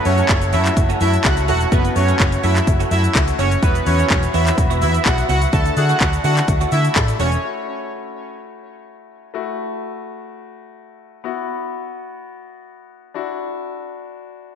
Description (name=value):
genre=dance-pop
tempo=126 BPM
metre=4/4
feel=straight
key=F# minor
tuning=A4 = 440 Hz
part: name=clear concert grand piano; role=accompaniment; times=0.0-14.6 s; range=F#3 to A4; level=-26 LUFS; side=left 8 dB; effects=sidechain pumping
part: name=large flute ensemble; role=sustained chords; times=0.0-7.4 s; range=F#4 to B5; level=-28 LUFS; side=right 1 dB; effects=sidechain pumping
part: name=direct-recorded clean electric guitar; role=riff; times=0.0-7.4 s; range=E3 to F#4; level=-29 LUFS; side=right 13 dB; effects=ensemble chorus
part: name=soft supersaw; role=melody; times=0.1-7.3 s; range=B3 to A5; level=-21 LUFS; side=right 2 dB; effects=sidechain pumping, tape echo
part: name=vintage muted fingered electric bass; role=bass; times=0.1-7.3 s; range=E1 to D3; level=-18 LUFS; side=equal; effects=sidechain pumping
part: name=house drum kit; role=drums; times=0.1-7.4 s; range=handclaps, hi-hat, kick drum, shaker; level=-19 LUFS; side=equal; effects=overdrive
part: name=egg shaker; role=percussion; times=0.1-7.4 s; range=none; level=-43 LUFS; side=left 15 dB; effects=none
room=moderate echo chamber reverb, RT60 2.1 s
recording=1960s-style stereo with parts hard left and right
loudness=-15 LUFS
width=side -8 dB against mid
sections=0.0-7.4 A section; 7.4-14.6 B section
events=drop 0.0-7.4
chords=0.0 F#m7; 3.6 Esus2; 5.5 Dadd9; 7.4 F#m7; 11.2 Esus2; 13.1 Dadd9